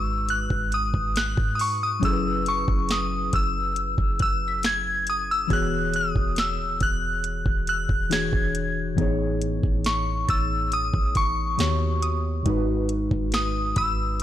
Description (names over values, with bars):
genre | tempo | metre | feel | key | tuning
contemporary R&B | 69 BPM | 4/4 | straight | G# phrygian | A4 = 440 Hz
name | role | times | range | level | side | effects
glassy synth bell | melody | 0.0-13.9 s | C#6 to G#6 | -26 LUFS | left 1 dB | chorus, digital delay
muted felt-like synth keys | accompaniment | 0.0-14.2 s | G#2 to C#5 | -29 LUFS | left 2 dB | chorus
clean 808-style bass | bass | 0.0-14.2 s | D#1 to G#2 | -29 LUFS | right 1 dB | none
glassy wavetable pluck | texture | 0.0-14.2 s | B5 to D#7 | -39 LUFS | equal | chorus, digital delay
smooth R&B drum kit | drums | 0.3-14.2 s | hi-hat, kick drum, snare drum | -26 LUFS | right 1 dB | none
room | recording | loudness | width
little or no reverb | blown-out, overdriven recording, overdrive | -22 LUFS | side -12 dB against mid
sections
0.0-14.2 A section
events
none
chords
0.0 G#m7; 2.0 F#9sus4; 5.5 E69; 8.1 E13; 9.0 Amaj9#11; 11.6 D#7alt; 12.5 G#m7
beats
0.29 1.16 | 2.02 2.90 3.76 4.63 | 5.50 6.37 7.24 8.11 | 8.98 9.85 10.72 11.59 | 12.46 13.33 14.20